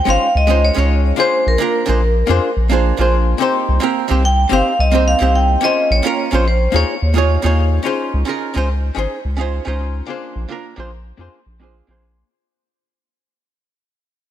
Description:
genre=sunset chillout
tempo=108 BPM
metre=4/4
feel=straight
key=unclear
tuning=A4 = 440 Hz
part: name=vibraphone with hard mallets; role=melody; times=0.0-7.5 s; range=Bb4 to G5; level=-18 LUFS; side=equal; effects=tape echo
part: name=archtop guitar, miked and amplified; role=accompaniment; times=0.1-12.3 s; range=Ab3 to Db5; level=-18 LUFS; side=moving between left 6 dB and right 6 dB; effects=auto-pan, low-pass filter, ping-pong delay
part: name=round analog bass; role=bass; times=0.1-12.2 s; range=G1 to F2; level=-16 LUFS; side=equal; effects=none
room=light reverb, small room reverb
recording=none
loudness=-13 LUFS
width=side -11 dB against mid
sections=0.0-7.9 A section; 7.9-12.3 B section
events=fade-out 7.9-12.3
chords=0.0 Dbmaj7; 1.2 Bb7; 3.4 Cm7; 5.6 Bbm7; 6.7 Eb7sus4; 7.9 Dbmaj7; 10.1 Bb7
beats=0.07 0.63 | 1.19 1.74 2.30 2.85 | 3.41 3.96 4.52 5.07 | 5.63 6.18 6.74 7.30 | 7.85 8.41 8.96 9.52 | 10.07 10.63 11.19 11.74

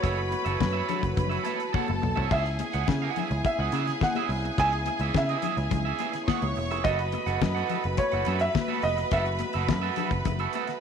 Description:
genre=disco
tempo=106 BPM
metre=4/4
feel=straight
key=F# dorian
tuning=A4 = 440 Hz
part: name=felt-muted upright piano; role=melody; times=0.0-10.8 s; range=C#5 to G#5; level=-31 LUFS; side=right 1 dB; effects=slapback echo
part: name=clear studio string section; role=second line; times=0.0-10.8 s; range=G#4 to C#6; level=-33 LUFS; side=right 1 dB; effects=none
part: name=electric guitar at the edge of break-up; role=accompaniment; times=0.0-10.7 s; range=F#4 to F#5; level=-32 LUFS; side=right 15 dB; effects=spring reverb
part: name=mellow French horn section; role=sustained chords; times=0.0-10.8 s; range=C#3 to F#4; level=-37 LUFS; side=equal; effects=none
part: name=picked electric bass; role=bass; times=0.0-10.5 s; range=E1 to C#3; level=-29 LUFS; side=equal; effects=none
part: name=damped 70s drum kit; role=drums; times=0.0-10.8 s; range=crash cymbal, hi-hat, kick drum, snare drum, toms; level=-28 LUFS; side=left 4 dB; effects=none
part: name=congas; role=percussion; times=0.3-10.7 s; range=none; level=-36 LUFS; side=left 15 dB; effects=none
room=light reverb, studio reverb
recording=1960s-style stereo with parts hard left and right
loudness=-24 LUFS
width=side -7 dB against mid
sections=0.0-10.8 A section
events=drum fill 1.7-2.3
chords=0.0 F#m7; 2.3 C#m7; 6.9 F#m7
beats=| 0.04 0.60 1.17 1.74 | 2.31 2.88 3.44 4.01 | 4.58 5.15 5.71 6.28 | 6.85 7.42 7.99 8.55 | 9.12 9.69 10.26

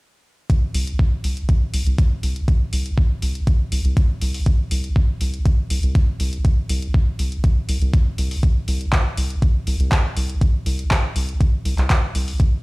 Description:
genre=acid house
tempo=121 BPM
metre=4/4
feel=straight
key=unclear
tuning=A4 = 440 Hz
part: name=electronic kick drum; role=drums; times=0.5-12.5 s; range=none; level=-16 LUFS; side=equal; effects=overdrive
part: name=punchy analog drum machine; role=drums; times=0.5-12.5 s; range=handclaps, hi-hat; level=-28 LUFS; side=equal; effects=none
part: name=round analog bass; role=bass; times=0.7-12.3 s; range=C2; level=-21 LUFS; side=equal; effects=sidechain pumping
room=little or no reverb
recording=played on a big sound system in a bare room, stone room reverb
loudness=-18 LUFS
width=side -24 dB against mid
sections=0.5-12.6 A section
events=none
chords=none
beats=| 0.50 0.99 1.49 1.99 | 2.48 2.98 3.47 3.97 | 4.46 4.96 5.46 5.95 | 6.45 6.94 7.44 7.93 | 8.43 8.93 9.42 9.92 | 10.41 10.91 11.41 11.90 | 12.40

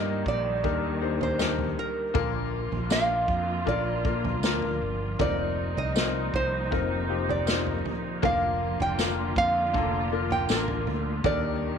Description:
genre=pop ballad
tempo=79 BPM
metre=4/4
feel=straight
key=Bb major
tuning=A4 = 440 Hz
part: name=nylon-string guitar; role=melody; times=0.0-11.8 s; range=Bb4 to G5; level=-29 LUFS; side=right 3 dB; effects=none
part: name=warm concert grand piano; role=accompaniment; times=0.0-11.8 s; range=Bb2 to C5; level=-31 LUFS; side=left 13 dB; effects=none
part: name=muted studio string section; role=sustained chords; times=0.0-11.8 s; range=Bb2 to F4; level=-34 LUFS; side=right 3 dB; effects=none
part: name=mellow fretless electric bass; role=bass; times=0.0-11.8 s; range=F1 to G2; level=-31 LUFS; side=right 1 dB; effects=wide subtle chorus
part: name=unplugged drum kit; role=drums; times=0.3-11.4 s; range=kick drum, snare drum, toms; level=-31 LUFS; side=right 1 dB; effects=none
part: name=tambourine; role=percussion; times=1.4-10.7 s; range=none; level=-38 LUFS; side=right 18 dB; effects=none
room=moderate spring reverb, RT60 2.9 s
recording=1960s-style stereo with parts hard left and right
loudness=-24 LUFS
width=side -7 dB against mid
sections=0.0-11.8 A section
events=none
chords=0.0 Ebmaj7; 2.1 Bb; 5.2 F7sus4; 8.2 Bb/F; 11.2 Ebmaj7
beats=0.64 1.39 | 2.15 2.91 3.67 4.43 | 5.20 5.96 6.72 7.48 | 8.23 8.99 9.74 10.49 | 11.24

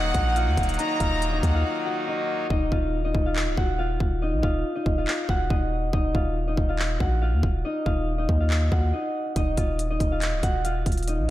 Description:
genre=hip hop, trap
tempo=140 BPM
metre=4/4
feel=half-time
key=Eb minor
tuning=A4 = 440 Hz
part: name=concert harp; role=melody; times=0.0-11.3 s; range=Eb4 to Gb5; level=-28 LUFS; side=left 1 dB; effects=diffuse ambient delay
part: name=warm studio violin section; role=second line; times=0.0-2.0 s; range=Gb5 to Bb5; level=-30 LUFS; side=equal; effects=diffuse ambient delay
part: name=pipe organ, trumpet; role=sustained chords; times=0.0-2.5 s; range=Eb3 to Eb4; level=-31 LUFS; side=equal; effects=none
part: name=long sustained 808-style bass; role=bass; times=0.0-11.3 s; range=Db1 to Eb2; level=-25 LUFS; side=equal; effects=none
part: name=trap drum kit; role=drums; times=0.1-11.2 s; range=handclaps, hi-hat, kick drum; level=-26 LUFS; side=equal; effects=none
room=moderate lush hall reverb, RT60 1.9 s, small room ambience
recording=dreamy mix soaked in reverb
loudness=-22 LUFS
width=side -14 dB against mid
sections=0.0-2.5 A section; 2.5-11.3 B section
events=break 1.6-2.5, 8.9-9.4; hi-hats muted 2.5-9.4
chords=0.0 Ebm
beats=0.36 | 0.79 1.22 1.65 2.08 | 2.50 2.93 3.36 3.79 | 4.22 4.65 5.08 5.50 | 5.93 6.36 6.79 7.22 | 7.65 8.07 8.50 8.93 | 9.36 9.79 10.22 10.65 | 11.07

